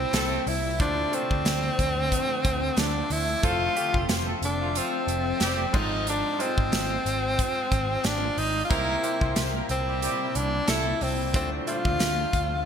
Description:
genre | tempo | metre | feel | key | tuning
1980s-style pop | 91 BPM | 4/4 | swing 55% on 16ths | unclear | A4 = 440 Hz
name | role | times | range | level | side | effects
bright tenor saxophone | melody | 0.0-12.7 s | C4 to F4 | -27 LUFS | equal | ping-pong delay
bright concert grand piano | accompaniment | 0.0-12.7 s | Ab2 to E5 | -35 LUFS | right 1 dB | none
shimmering ambient pad | sustained chords | 0.0-12.7 s | Bb2 to E5 | -34 LUFS | left 1 dB | chorus, built-in reverb
vintage muted picked electric bass | bass | 0.0-12.7 s | F1 to D2 | -31 LUFS | equal | none
warm horn section | stabs | 0.1-10.9 s | F3 to C5 | -34 LUFS | equal | none
modern studio drum kit | drums | 0.1-12.5 s | crash cymbal, hi-hat, kick drum, snare drum, tambourine | -28 LUFS | right 1 dB | gated reverb
group handclap | percussion | 0.1-12.2 s | none | barely audible | none | none
room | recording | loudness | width
moderate lush hall reverb, RT60 1.8 s, small room ambience | bright 1980s-style digital production | -23 LUFS | side -8 dB against mid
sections
0.0-12.7 A section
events
none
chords
0.0 C7; 0.8 Dm7; 3.4 Fmaj7; 5.7 Ab6; 8.7 C7; 11.3 Dm7

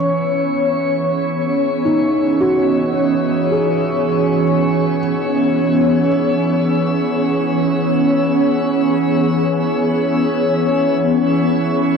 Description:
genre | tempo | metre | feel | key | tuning
ambient | free time | none | none | E major | A4 = 442 Hz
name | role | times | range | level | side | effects
glassy FM pad | sustained chords | 0.0-12.0 s | E3 to C#5 | -15 LUFS | equal | ensemble chorus, built-in reverb, phaser
felt-muted upright piano | arpeggios | 0.0-12.0 s | D#4 to G#4 | -22 LUFS | equal | tape echo
drifting glass-harmonics texture | texture | 0.0-12.0 s | E4 to E6 | -29 LUFS | equal | chorus, built-in reverb
room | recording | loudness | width
wet shimmer reverb, RT60 7.3 s | worn, warbling old tape, cassette tape, warbly pitch drift | -14 LUFS | side -5 dB against mid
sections
0.0-12.0 A section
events
fade-in on synth texture 0.0-12.0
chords
0.0 E6

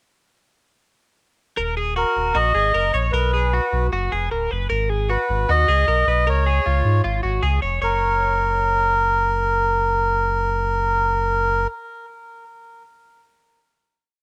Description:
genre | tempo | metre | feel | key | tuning
jangly indie pop | 154 BPM | 4/4 | straight | F# major | A4 = 436 Hz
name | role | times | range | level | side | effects
twelve-string electric guitar | arpeggios | 1.6-8.9 s | E#4 to C#5 | -27 LUFS | equal | cassette tape
sub bass with octave | bass | 1.6-11.7 s | D1 to G#2 | -25 LUFS | equal | none
melodica | melody | 2.0-11.7 s | A#4 to D#5 | -22 LUFS | equal | cassette tape, analog delay
room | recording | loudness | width
light reverb | home recording on cassette | -20 LUFS | mono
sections
1.6-7.8 bridge; 7.8-10.9 final chord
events
none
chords
1.6 D#m; 3.1 Bm; 4.7 G#m; 6.3 C#; 7.8 F#

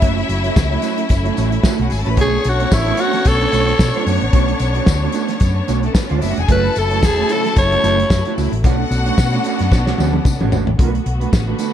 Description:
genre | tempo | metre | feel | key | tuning
disco | 112 BPM | 4/4 | swing 56% on 16ths | B minor | A4 = 440 Hz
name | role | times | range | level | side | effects
rich studio string section | second line | 0.0-10.5 s | A3 to C#6 | -23 LUFS | left 4 dB | none
mellow electric guitar | accompaniment | 0.0-11.7 s | A3 to C#5 | -23 LUFS | right 9 dB | none
rich studio string section | sustained chords | 0.0-11.7 s | C#3 to F#4 | -25 LUFS | equal | none
hollow-body short-scale fingered electric bass | bass | 0.0-11.5 s | E1 to B2 | -19 LUFS | equal | none
warm soul drum kit | drums | 0.0-11.7 s | hi-hat, kick drum, snare drum, toms | -17 LUFS | equal | none
tambourine | percussion | 0.6-11.7 s | none | -35 LUFS | left 9 dB | none
raspy alto saxophone | melody | 2.2-8.3 s | E4 to C#5 | -18 LUFS | equal | none
room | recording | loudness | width
light reverb, studio reverb | dark, warm production | -14 LUFS | side -10 dB against mid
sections
0.0-10.8 A section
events
drum fill 9.7-10.8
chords
0.0 F#m7; 2.2 Bm9; 6.5 F#m7; 8.6 Bm9; 10.8 Bm7

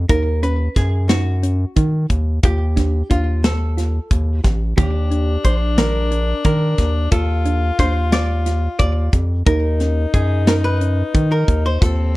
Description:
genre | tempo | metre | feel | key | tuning
progressive instrumental, band music in an uneven meter | 179 BPM (eighths) | 7/8 | straight | unclear | A4 = 440 Hz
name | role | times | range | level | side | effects
round analog bass | bass | 0.0-12.2 s | A1 to Eb3 | -18 LUFS | equal | none
archtop guitar, miked and amplified | melody | 0.1-12.2 s | F4 to D5 | -25 LUFS | right 1 dB | slapback echo
thumb-piano-like synth pluck | arpeggios | 0.1-12.0 s | Eb3 to G4 | -27 LUFS | right 3 dB | chorus
tight funk drum kit | drums | 0.1-12.0 s | hi-hat, kick drum, snare drum | -18 LUFS | equal | none
breathy alto saxophone | second line | 4.8-12.2 s | C4 to F4 | -25 LUFS | left 4 dB | none
room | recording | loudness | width
little or no reverb | dark, warm production, faint mains hum | -15 LUFS | side -19 dB against mid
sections
0.0-12.2 A section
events
none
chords
0.1 Ebm7; 2.4 Dm/Eb; 4.8 Ebmaj7; 7.1 Ebmaj7(b5, no3); 9.5 Bmaj7/D#

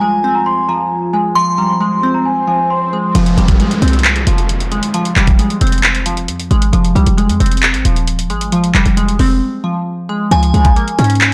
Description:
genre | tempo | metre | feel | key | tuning
hip hop, trap | 134 BPM | 4/4 | half-time | F minor | A4 = 440 Hz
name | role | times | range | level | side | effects
large celesta | melody | 0.0-3.1 s | Ab5 to C6 | -18 LUFS | equal | tape echo
glassy synth bell | second line | 0.0-2.7, 10.3-11.3 s | Ab5 to C6 | -21 LUFS | equal | chorus, tape echo
glassy wavetable pluck | accompaniment | 0.0-11.3 s | F3 to Db4 | -19 LUFS | equal | chorus
deep dark ambient pad | sustained chords | 0.0-3.1 s | F3 to Ab5 | -27 LUFS | equal | chorus, built-in reverb
swell and downlifter | sound effects | 1.6-6.7 s | none | -29 LUFS | equal | none
trap drum kit | drums | 3.1-11.3 s | handclaps, hi-hat, kick drum | -18 LUFS | equal | none
short 808-style bass | bass | 3.2-11.3 s | Eb1 to Ab2 | -16 LUFS | equal | none
room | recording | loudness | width
little or no reverb | blown-out, overdriven recording, overdrive | -14 LUFS | mono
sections
0.0-3.1 A section; 3.1-11.3 B section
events
swell 1.6-3.1; break 9.4-10.3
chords
0.0 Fmadd9; 10.3 Db6

